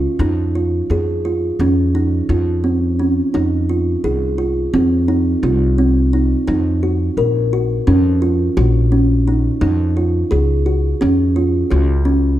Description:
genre	contemporary instrumental, chamber music in an uneven meter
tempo	172 BPM (eighths)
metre	9/8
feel	straight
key	F phrygian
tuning	A4 = 440 Hz
part	kalimba	arpeggios	0.0-12.2 s	C4 to Bb4	-16 LUFS	right 1 dB	none
part	upright bass	bass	0.0-12.4 s	Bb1 to F2	-17 LUFS	left 1 dB	none
room	moderate recital hall reverb, RT60 1.4 s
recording	dark, warm production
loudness	-14 LUFS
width	side -13 dB against mid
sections	0.0-12.4 A section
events	none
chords	0.2 F7(no3); 6.5 Ebm (rootless); 9.6 Gb5

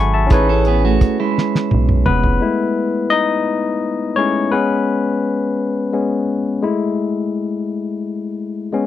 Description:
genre	slow six-eight R&B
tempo	57 BPM (dotted quarters)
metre	6/8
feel	straight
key	unclear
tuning	A4 = 439 Hz
part	barky tine electric piano	accompaniment	0.0-8.9 s	F#3 to C#6	-17 LUFS	left 4 dB	none
part	rubbery square bass	bass	0.0-2.4 s	E#1 to B1	-16 LUFS	right 1 dB	none
part	clean electric guitar	second line	0.3-2.2 s	G#3 to B4	-20 LUFS	right 12 dB	spring reverb, slapback echo
part	cloth-damped thuddy drum kit	drums	0.3-2.4 s	hi-hat, kick drum, snare drum, toms	-16 LUFS	right 1 dB	none
room	little or no reverb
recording	dry, close 1970s-style studio recording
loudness	-15 LUFS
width	side -12 dB against mid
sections	0.0-2.4 A section; 2.4-8.9 A section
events	drum fill 1.4-2.4; tine electric piano solo 2.4-8.9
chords	0.3 Amaj9; 2.4 Amaj9#11/G#; 4.5 G#madd11; 6.6 Eadd11/G#

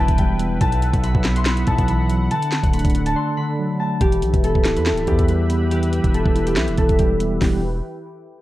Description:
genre	hip hop, trap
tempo	141 BPM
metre	4/4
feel	half-time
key	E minor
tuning	A4 = 440 Hz
part	concert harp	melody	0.0-7.6 s	G4 to C6	-24 LUFS	left 1 dB	low-pass filter, digital delay
part	mellow tine electric piano	accompaniment	0.0-7.6 s	B2 to E5	-23 LUFS	equal	medium stereo tremolo, low-pass filter
part	sweeping resonant pad	sustained chords	0.0-7.6 s	D3 to B5	-31 LUFS	equal	chorus, low-pass filter
part	hard-hitting 808-style bass	bass	0.0-7.8 s	D1 to E2	-22 LUFS	equal	none
part	trap drum kit	drums	0.1-7.5 s	handclaps, hi-hat, kick drum, snare drum	-20 LUFS	equal	none
room	light reverb, digital ambience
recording	worn, warbling old tape, cassette tape, warbly pitch drift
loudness	-16 LUFS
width	side -16 dB against mid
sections	0.0-4.0 A section; 4.0-7.4 B section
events	break 3.2-4.0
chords	0.0 Em; 0.6 Bsus4; 2.3 D; 4.0 Em

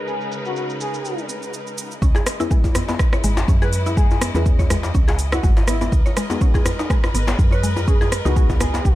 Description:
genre	afro house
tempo	123 BPM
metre	4/4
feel	swing 55% on 16ths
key	C# dorian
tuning	A4 = 438 Hz
part	clear studio string section	sustained chords	0.0-8.9 s	C#3 to D#5	-30 LUFS	left 1 dB	sidechain pumping
part	expressive synth lead	melody	0.1-8.9 s	E4 to B4	-30 LUFS	equal	lush chorus, dub echo
part	afro-pop drum kit	drums	0.1-8.9 s	hi-hat, rim click, shaker	-27 LUFS	right 1 dB	studio reverb
part	mallet-like synth pluck	arpeggios	2.0-8.8 s	G#3 to C#5	-27 LUFS	equal	chorus, sidechain pumping
part	woody FM bass	bass	2.0-8.9 s	G#1 to F#2	-21 LUFS	equal	sidechain pumping
part	electronic kick drum	drums	2.0-8.9 s	none	-17 LUFS	equal	studio reverb
part	djembe	percussion	2.1-8.8 s	none	-27 LUFS	left 2 dB	none
part	deep mellow chord stab	stabs	2.4-8.9 s	G#3 to B4	-29 LUFS	left 3 dB	chorus, sidechain pumping, dub echo
room	little or no reverb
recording	low-pass filter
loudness	-16 LUFS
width	side -15 dB against mid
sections	0.0-2.0 A section; 2.0-8.9 B section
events	filter sweep 0.0-2.0; drop 2.0-8.9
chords	0.0 G#m/C#; 2.0 C#m7; 5.9 G#m7

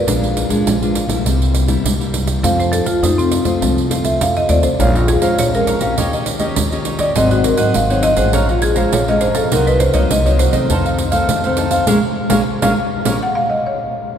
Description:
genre	samba and choro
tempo	102 BPM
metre	4/4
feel	straight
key	Bb minor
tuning	A4 = 440 Hz
part	marimba with medium mallets	melody	0.0-14.1 s	C4 to Gb5	-18 LUFS	equal	none
part	nylon-string guitar	accompaniment	0.0-13.2 s	F2 to G4	-20 LUFS	left 2 dB	none
part	upright bass	bass	0.1-13.2 s	Ab1 to F2	-19 LUFS	equal	none
part	pandeiro	percussion	0.1-13.2 s	none	-21 LUFS	right 4 dB	none
part	cavaquinho	accompaniment	4.8-13.2 s	Eb4 to Bb5	-22 LUFS	equal	none
room	wet cathedral reverb, RT60 4.7 s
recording	recorded in a church or concert hall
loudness	-13 LUFS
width	side -8 dB against mid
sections	0.0-14.2 A section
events	marimba solo 0.0-14.2; band accent 11.9-14.2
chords	0.1 Bb7; 1.3 C7; 2.4 F; 4.8 Bbm7; 6.0 Eb7; 7.2 Ab7; 8.3 Bbm7; 9.5 Cm7b5; 10.7 F7; 11.9 Bbm7

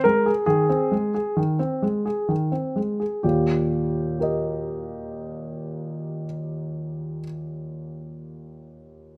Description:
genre	classical-period piano sonatina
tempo	62-70 BPM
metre	4/4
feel	straight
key	Eb major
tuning	A4 = 440 Hz
part	clear grand piano	solo	0.0-9.2 s	Eb2 to Eb5	-25 LUFS	equal	none
room	light reverb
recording	close, detailed microphones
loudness	-25 LUFS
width	mono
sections	0.0-3.2 A section; 3.2-7.0 B section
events	slowing down 0.0-3.2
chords	0.0 Ab/Eb; 3.2 Eb

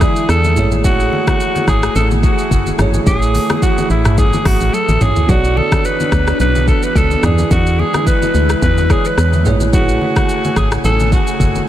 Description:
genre	afrobeats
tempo	108 BPM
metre	4/4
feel	swing 55% on 16ths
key	A major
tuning	A4 = 442 Hz
part	growling alto saxophone	melody	0.0-11.6 s	E4 to B4	-18 LUFS	equal	analog delay
part	bell-like tine electric piano	accompaniment	0.0-11.7 s	E3 to D5	-22 LUFS	right 5 dB	none
part	airy breathy pad	sustained chords	0.0-11.7 s	C#3 to G#5	-22 LUFS	left 1 dB	chorus
part	organ-like FM bass	bass	0.0-11.6 s	F#1 to E2	-15 LUFS	equal	none
part	afro-pop drum kit	drums	0.0-11.7 s	hi-hat, kick drum, rim click, shaker, toms	-17 LUFS	equal	none
part	congas	percussion	0.0-11.7 s	none	-24 LUFS	left 2 dB	none
room	light reverb, digital ambience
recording	none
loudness	-11 LUFS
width	side -12 dB against mid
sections	0.0-11.7 A section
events	drum fill 4.7-5.3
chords	0.0 E7; 0.6 Amaj7; 5.3 Bmadd9; 7.2 E7; 9.5 Amaj7

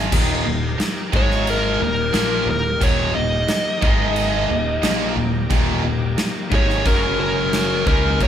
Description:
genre	hard rock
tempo	89 BPM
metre	4/4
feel	straight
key	unclear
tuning	A4 = 440 Hz
part	overdriven semi-hollow guitar	riff	0.0-8.3 s	Eb2 to Db4	-24 LUFS	left 5 dB	none
part	tight distorted guitar	riff	0.0-8.3 s	Eb2 to Db4	-25 LUFS	right 8 dB	distortion
part	modern bright picked electric bass	bass	0.0-8.3 s	Eb1 to Db2	-26 LUFS	equal	none
part	overdriven tonewheel organ	sustained chords	0.1-8.3 s	Gb3 to Bb4	-30 LUFS	equal	slow rotary speaker, chorus vibrato
part	huge arena drum kit	drums	0.1-8.3 s	crash cymbal, kick drum, snare drum	-22 LUFS	equal	none
part	dark smooth lead guitar	melody	1.2-8.3 s	Bb4 to Eb5	-21 LUFS	left 1 dB	overdrive
room	moderate large studio reverb, RT60 0.8 s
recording	band playing live in one room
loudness	-17 LUFS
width	side -9 dB against mid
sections	0.1-8.3 A section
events	lead electric guitar solo 0.1-8.3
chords	0.1 Eb; 1.1 Ab5; 1.8 Eb; 3.8 Ab5; 4.5 Eb; 6.9 Gb5

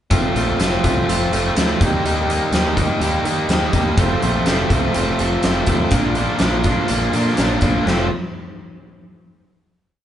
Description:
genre	classic rock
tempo	124 BPM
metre	4/4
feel	straight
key	F mixolydian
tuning	A4 = 439 Hz
part	biting overdriven guitar	riff	0.1-8.1 s	F2 to F4	-23 LUFS	left 4 dB	none
part	overdriven electric guitar	riff	0.1-8.1 s	F2 to G4	-20 LUFS	right 2 dB	none
part	growling picked electric bass	bass	0.1-8.1 s	F1 to Eb3	-24 LUFS	equal	overdrive
part	huge arena drum kit	drums	0.1-8.0 s	hi-hat, kick drum, snare drum	-20 LUFS	equal	none
room	moderate small room ambience, RT60 0.5 s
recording	band playing live in one room, nothing above 11.0 kHz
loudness	-15 LUFS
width	side -10 dB against mid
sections	0.1-7.9 verse; 7.9-9.8 final chord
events	none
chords	0.1 F; 1.8 Eb; 4.0 F; 5.9 Bb; 7.9 F

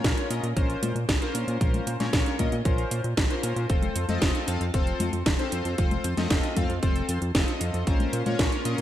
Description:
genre	italo disco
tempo	115 BPM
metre	4/4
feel	straight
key	Bb harmonic minor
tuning	A4 = 444 Hz
part	chorused polysynth	stabs	0.0-8.8 s	C4 to F5	-30 LUFS	left 2 dB	digital delay
part	fat analog bass	bass	0.0-8.8 s	F1 to Bb2	-29 LUFS	equal	none
part	electronic kick drum	drums	0.0-8.5 s	none	-26 LUFS	equal	none
part	house drum kit	drums	0.0-8.8 s	congas, hi-hat, snare drum	-29 LUFS	equal	gated reverb
part	phased string machine	sustained chords	7.9-8.8 s	Bb3 to C6	-36 LUFS	right 1 dB	ensemble chorus, phaser
room	moderate lush hall reverb, RT60 1.8 s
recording	bright 1980s-style digital production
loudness	-23 LUFS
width	side -12 dB against mid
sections	0.0-8.8 A section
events	none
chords	0.0 Bbmadd9; 3.7 F; 7.9 Bbmadd9

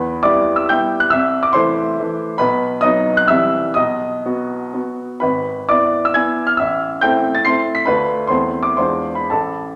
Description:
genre	classical, romantic triple-time dance for piano with dotted rhythms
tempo	102-152 BPM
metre	3/4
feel	rubato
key	A minor from 5.2 s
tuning	A4 = 440 Hz
part	clear baby grand piano	solo	0.0-9.8 s	G#1 to C7	-17 LUFS	equal	none
room	wet recital hall reverb, RT60 1.4 s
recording	none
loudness	-17 LUFS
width	mono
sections	0.0-9.8 A section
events	none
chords	0.0 Em; 1.1 Am/C; 2.4 B; 3.3 C; 3.8 B; 5.2 E/G#; 6.6 Am; 7.9 Dm; 8.3 Am/E; 8.8 E7b9

